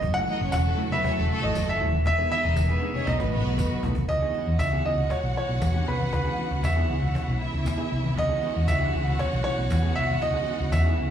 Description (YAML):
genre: disco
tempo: 118 BPM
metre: 4/4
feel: straight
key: C# minor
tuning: A4 = 437 Hz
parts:
  - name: warm concert grand piano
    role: melody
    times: 0.0-11.1 s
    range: B4 to F#5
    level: -28 LUFS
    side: right 1 dB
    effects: slapback echo
  - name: mellow electric guitar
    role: accompaniment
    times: 0.0-11.1 s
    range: E3 to C#5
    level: -35 LUFS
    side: right 2 dB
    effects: slapback echo
  - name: clear studio string section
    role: sustained chords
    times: 0.0-11.1 s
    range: C#3 to G#4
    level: -34 LUFS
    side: right 1 dB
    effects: none
  - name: hollow-body short-scale fingered electric bass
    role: bass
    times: 0.0-11.1 s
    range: D#1 to E2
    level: -25 LUFS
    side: equal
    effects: none
  - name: cajon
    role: drums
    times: 0.0-11.0 s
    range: none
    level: -32 LUFS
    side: equal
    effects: none
  - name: congas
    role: percussion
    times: 0.0-10.8 s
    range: none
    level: -36 LUFS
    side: left 5 dB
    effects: none
  - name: warm studio violin section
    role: second line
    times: 0.3-11.1 s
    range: A3 to F#5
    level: -33 LUFS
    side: right 1 dB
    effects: slapback echo
  - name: tambourine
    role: percussion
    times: 0.5-10.8 s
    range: none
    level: -46 LUFS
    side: left 4 dB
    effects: none
room: light reverb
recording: live gig heard through the venue's PA, club reverb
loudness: -22 LUFS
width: side -9 dB against mid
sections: 0.0-4.1 A section; 4.1-11.1 B section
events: drum fill 2.1-4.1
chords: 0.0 F#m7; 2.1 Emaj7; 3.1 B7; 4.1 C#m9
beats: | 0.02 0.53 1.04 1.55 | 2.05 2.56 3.07 3.58 | 4.09 4.60 5.11 5.62 | 6.13 6.64 7.15 7.66 | 8.17 8.68 9.19 9.70 | 10.21 10.72